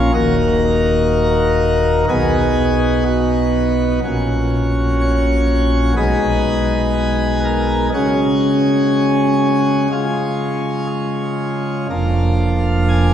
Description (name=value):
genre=classical, chorale-style piece for pipe organ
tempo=61 BPM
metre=4/4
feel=straight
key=unclear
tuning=A4 = 441 Hz
part: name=pipe organ, plenum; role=solo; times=0.0-13.1 s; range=D#1 to G#5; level=-14 LUFS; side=equal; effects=none
room=wet concert hall reverb, RT60 2.4 s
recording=heard from further back in the room, lossy compression artefacts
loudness=-14 LUFS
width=side -9 dB against mid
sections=0.0-13.1 A section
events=none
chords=0.1 D#m; 2.1 B; 4.0 F#/A#; 6.0 G#m/B; 7.9 C#sus4; 9.9 C#; 11.9 A#7/E#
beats=| 0.15 1.12 2.09 3.06 | 4.03 5.00 5.96 6.94 | 7.93 8.92 9.91 10.90 | 11.90 12.89